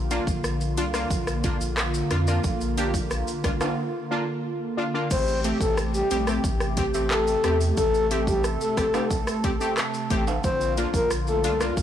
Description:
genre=dancehall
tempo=90 BPM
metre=4/4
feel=straight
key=A phrygian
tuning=A4 = 440 Hz
part: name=hollow soft pad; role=sustained chords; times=0.0-11.8 s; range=C3 to A4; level=-29 LUFS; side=right 1 dB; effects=chorus, sidechain pumping
part: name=warm sub bass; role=bass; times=0.0-11.8 s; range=A1 to F2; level=-28 LUFS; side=equal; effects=none
part: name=synth brass stab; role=accompaniment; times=0.1-11.7 s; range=A3 to G4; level=-30 LUFS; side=left 1 dB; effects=chorus, sidechain pumping
part: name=pop drum kit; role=drums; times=0.1-11.8 s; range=crash cymbal, handclaps, hi-hat, kick drum, rim click, shaker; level=-28 LUFS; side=equal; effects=overdrive
part: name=tube shaker and timbales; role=percussion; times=0.3-11.8 s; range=none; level=-36 LUFS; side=right 6 dB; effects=none
part: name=breathy flute-like synth lead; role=melody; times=5.1-11.6 s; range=G4 to C5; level=-25 LUFS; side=left 1 dB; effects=chorus, tape echo
room=light reverb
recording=blown-out, overdriven recording, overdrive, small room ambience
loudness=-22 LUFS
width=side -10 dB against mid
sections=0.0-5.1 A section; 5.1-11.8 B section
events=break 3.8-5.1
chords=0.0 Bb; 5.1 Am7; 10.4 Bb

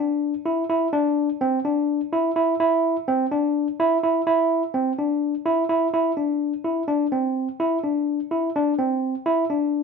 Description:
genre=progressive instrumental, progressive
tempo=252 BPM (eighths)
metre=7/8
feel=straight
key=C major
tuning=A4 = 440 Hz
part: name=barky tine electric piano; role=solo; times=0.0-9.8 s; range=C4 to E4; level=-20 LUFS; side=equal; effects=none
room=moderate studio reverb, RT60 0.7 s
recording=band playing live in one room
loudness=-20 LUFS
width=side -5 dB against mid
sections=0.0-5.9 A section; 5.9-9.8 B section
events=none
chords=none

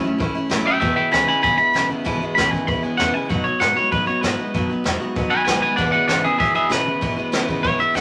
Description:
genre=rockabilly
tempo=193 BPM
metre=4/4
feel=straight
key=E major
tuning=A4 = 436 Hz
part: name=twangy electric guitar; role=melody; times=0.0-8.0 s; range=G#4 to B5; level=-21 LUFS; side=equal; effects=none
part: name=picked steel-string acoustic guitar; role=accompaniment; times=0.0-8.0 s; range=E2 to F#4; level=-27 LUFS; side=equal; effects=none
part: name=electric guitar through a small old amp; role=riff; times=0.0-8.0 s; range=E2 to G#3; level=-30 LUFS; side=equal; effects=none
part: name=upright bass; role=bass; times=0.0-8.0 s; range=E1 to A2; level=-36 LUFS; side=equal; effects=none
part: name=jazz brush drum kit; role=drums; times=0.2-8.0 s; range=hi-hat, kick drum, snare drum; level=-27 LUFS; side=equal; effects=none
room=moderate studio reverb, RT60 0.6 s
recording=none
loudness=-19 LUFS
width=mono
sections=0.0-8.0 A section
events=clean electric guitar solo 0.0-8.0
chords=0.0 A; 0.8 E; 3.3 B; 5.8 E

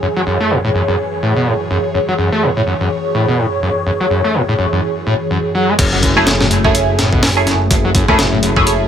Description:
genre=breakbeat, breaks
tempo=125 BPM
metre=4/4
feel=swing 57% on 16ths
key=F# minor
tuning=A4 = 440 Hz
part: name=phased analog pad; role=sustained chords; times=0.0-8.9 s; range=F#2 to C#5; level=-18 LUFS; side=equal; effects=phaser, chorus, sidechain pumping
part: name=screaming distorted acid line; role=riff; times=0.0-8.6 s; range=F#2 to A3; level=-16 LUFS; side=equal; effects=distortion, lush chorus, tape echo
part: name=fat analog bass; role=bass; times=5.8-8.9 s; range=F#1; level=-18 LUFS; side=equal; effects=none
part: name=breakbeat sampler-style drum kit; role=drums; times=5.8-8.8 s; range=crash cymbal, hi-hat, kick drum, snare drum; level=-15 LUFS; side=equal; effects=studio reverb
part: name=impact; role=sound effects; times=5.9-7.7 s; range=none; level=-26 LUFS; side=equal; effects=none
part: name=band-passed chord stab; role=stabs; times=6.2-8.9 s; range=A3 to G#4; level=-16 LUFS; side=right 2 dB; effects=phaser, wide subtle chorus, tape echo
room=moderate small room reverb, RT60 0.5 s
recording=none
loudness=-12 LUFS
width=side -8 dB against mid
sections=0.0-5.8 A section; 5.8-8.9 B section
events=drop 5.8-8.9; impact 5.8-7.7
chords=0.0 F#m9

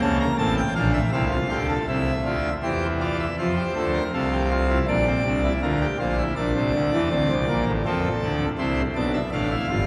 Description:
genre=classical, baroque-style 3-part fugue for pipe organ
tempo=81 BPM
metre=4/4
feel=straight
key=F major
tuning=A4 = 442 Hz
part: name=pipe organ, full organ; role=solo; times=0.0-9.9 s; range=G1 to Bb5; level=-23 LUFS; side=equal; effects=none
room=wet cathedral reverb, RT60 5.4 s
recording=heard from further back in the room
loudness=-23 LUFS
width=mono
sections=0.0-1.9 A section; 1.9-9.9 B section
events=none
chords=0.4 F/A; 1.9 Cadd9; 3.4 F; 4.9 Bb; 6.4 Bbmaj9#11; 7.8 Dm

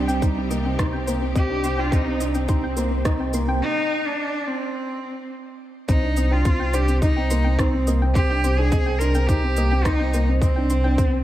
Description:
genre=piano and strings electronica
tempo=106 BPM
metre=4/4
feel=straight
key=C minor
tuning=A4 = 440 Hz
part: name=clear cello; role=melody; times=0.0-11.2 s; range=G3 to Bb4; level=-26 LUFS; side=right 1 dB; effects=low-pass filter, shimmer reverb
part: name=rich studio string section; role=sustained chords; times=0.0-3.6 s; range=C3 to G4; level=-32 LUFS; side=right 1 dB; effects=sidechain pumping, shimmer reverb
part: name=felt-muted upright piano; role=riff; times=0.0-11.2 s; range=Bb3 to Eb4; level=-26 LUFS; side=equal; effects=none
part: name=round analog bass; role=bass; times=0.0-11.2 s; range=C2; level=-22 LUFS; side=equal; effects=sidechain pumping
part: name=soft round pluck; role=arpeggios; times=0.1-11.1 s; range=C5 to C6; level=-33 LUFS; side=left 1 dB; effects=chorus, sidechain pumping, tape echo, shimmer reverb
part: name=electronic shaker and rim click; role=drums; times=0.1-11.1 s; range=none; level=-33 LUFS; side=right 2 dB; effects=none
part: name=electronic kick drum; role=drums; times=0.2-11.1 s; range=none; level=-21 LUFS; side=equal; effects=none
room=moderate lush hall reverb, RT60 1.8 s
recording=dark, warm production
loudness=-19 LUFS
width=side -13 dB against mid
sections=0.0-5.9 A section; 5.9-11.2 B section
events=build-up 0.0-5.9; filter sweep on cello 0.0-5.9; break 3.6-5.9; drop 5.9-11.2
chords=0.0 Cm

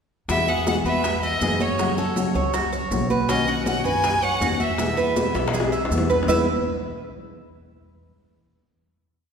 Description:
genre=latin, Cuban son and guajira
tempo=160 BPM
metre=4/4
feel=straight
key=E major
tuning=A4 = 440 Hz
part: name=bright violin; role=melody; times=0.3-5.4 s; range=C#5 to G#5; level=-25 LUFS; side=equal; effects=none
part: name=nylon-string guitar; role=accompaniment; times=0.3-6.4 s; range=E2 to F#4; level=-27 LUFS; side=left 2 dB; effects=none
part: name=Cuban tres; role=arpeggios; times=0.3-6.5 s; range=C#4 to E5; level=-26 LUFS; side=right 3 dB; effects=none
part: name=upright bass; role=bass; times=0.3-6.5 s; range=B1 to F#2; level=-28 LUFS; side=equal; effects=none
part: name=bongos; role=percussion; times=0.3-6.4 s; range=none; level=-29 LUFS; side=left 4 dB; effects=none
part: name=congas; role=percussion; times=0.3-6.4 s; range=none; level=-30 LUFS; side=right 2 dB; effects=none
part: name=maracas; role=percussion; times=0.3-6.4 s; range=none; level=-38 LUFS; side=right 4 dB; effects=none
room=wet concert hall reverb, RT60 2.2 s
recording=recorded in a church or concert hall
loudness=-20 LUFS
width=side -6 dB against mid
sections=0.3-6.3 A section; 6.3-7.8 final chord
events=drum fill 5.3-6.3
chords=0.3 Eadd9; 1.8 F#m; 3.3 Badd9; 4.8 E; 6.3 E5

